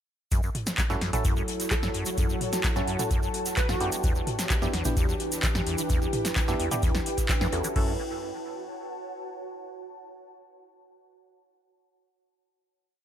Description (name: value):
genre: acid house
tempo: 129 BPM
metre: 4/4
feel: straight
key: F# phrygian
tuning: A4 = 441 Hz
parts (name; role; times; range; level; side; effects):
- dark analog pad; sustained chords; 0.7-8.0 s; E3 to A4; -35 LUFS; left 1 dB; chorus, sidechain pumping
- acid bass, saw; riff; 0.3-8.0 s; E2 to F#3; -33 LUFS; equal; tube saturation, analog chorus, sidechain pumping, tape echo
- electro analog drum machine; drums; 0.3-7.9 s; crash cymbal, handclaps, hi-hat, snare drum, toms; -31 LUFS; equal; overdrive
- electronic kick drum; drums; 0.3-7.9 s; none; -27 LUFS; equal; none
- jazz brush drum kit; drums; 0.3-7.6 s; hi-hat, snare drum; -41 LUFS; left 3 dB; high-pass filter on hats, high-pass filter on snare, high-pass filter on room
- tube shaker; percussion; 0.3-7.7 s; none; -37 LUFS; right 3 dB; none
- ethereal airy pad; texture; 1.1-9.6 s; E4 to A5; -35 LUFS; right 1 dB; ensemble chorus, built-in reverb, sidechain pumping
- percussive organ stab; stabs; 0.9-7.9 s; B3 to A4; -34 LUFS; right 1 dB; chorus, phaser, tape echo
- plucky unison lead; melody; 1.7-4.0 s; F#4 to B4; -36 LUFS; right 1 dB; ensemble chorus, dub echo
room: digital ambience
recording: none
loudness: -25 LUFS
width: side -10 dB against mid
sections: 0.3-7.8 drop; 7.8-9.6 final chord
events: drop 0.3-7.8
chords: 0.3 F#m7; 4.0 Em7; 7.8 F#m7